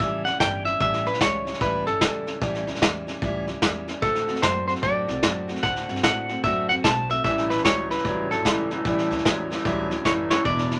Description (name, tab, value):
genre	rockabilly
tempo	149 BPM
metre	4/4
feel	swing 63% on 8ths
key	A mixolydian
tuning	A4 = 440 Hz
part	semi-hollow electric guitar	melody	0.0-10.8 s	A4 to A5	-26 LUFS	equal	none
part	picked steel-string acoustic guitar	accompaniment	0.0-10.8 s	E2 to F#4	-33 LUFS	equal	none
part	upright bass	bass	0.0-10.8 s	E1 to A2	-38 LUFS	equal	none
part	vintage brush drum kit	drums	0.0-10.7 s	hi-hat, kick drum, snare drum	-28 LUFS	equal	none
part	electric guitar through a small old amp	riff	7.2-10.8 s	E2 to F#3	-29 LUFS	equal	none
room	light reverb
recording	none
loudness	-24 LUFS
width	mono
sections	0.0-10.8 A section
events	drum fill 10.1-10.5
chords	0.0 A7; 4.0 D7; 7.2 A7